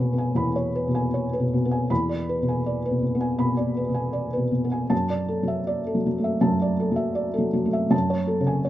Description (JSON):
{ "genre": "neoclassical minimalist piano", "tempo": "80 BPM", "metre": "4/4", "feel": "rubato", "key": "unclear", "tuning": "A4 = 442 Hz", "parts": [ { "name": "felt-muted upright piano", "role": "solo", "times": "0.0-8.7 s", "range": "E2 to B5", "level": "-22 LUFS", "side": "equal", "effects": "none" } ], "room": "light reverb, small room ambience", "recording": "rough home demo mix, nothing above 7.8 kHz", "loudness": "-22 LUFS", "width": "side -13 dB against mid", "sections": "0.0-8.7 A section", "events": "none", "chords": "0.0 C#m7/E; 1.9 E7; 4.9 Dadd9/F#; 7.9 F#madd9", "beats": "0.37 1.13 | 1.90 2.66 3.41 4.16 | 4.91 5.67 6.42 7.17 | 7.93 8.68" }